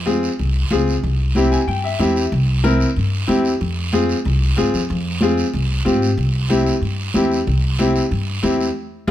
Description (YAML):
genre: latin, cumbia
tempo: 186 BPM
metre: 4/4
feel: straight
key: unclear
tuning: A4 = 437 Hz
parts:
  - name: upright bass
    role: bass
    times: 0.0-9.1 s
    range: C2 to Ab2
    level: -20 LUFS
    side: equal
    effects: none
  - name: bright upright piano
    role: accompaniment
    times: 0.1-9.1 s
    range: C4 to Ab5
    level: -19 LUFS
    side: left 2 dB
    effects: none
  - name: congas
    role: percussion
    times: 0.1-9.1 s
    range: none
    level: -24 LUFS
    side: right 1 dB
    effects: none
  - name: guiro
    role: percussion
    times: 0.1-9.1 s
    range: none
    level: -30 LUFS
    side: right 5 dB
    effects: none
room: light reverb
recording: none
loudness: -16 LUFS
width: side -12 dB against mid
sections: 0.0-9.1 A section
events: upright piano fill 1.4-2.3; band accent 8.8-9.1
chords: 0.0 Fm; 1.0 C; 3.6 Fm; 6.2 C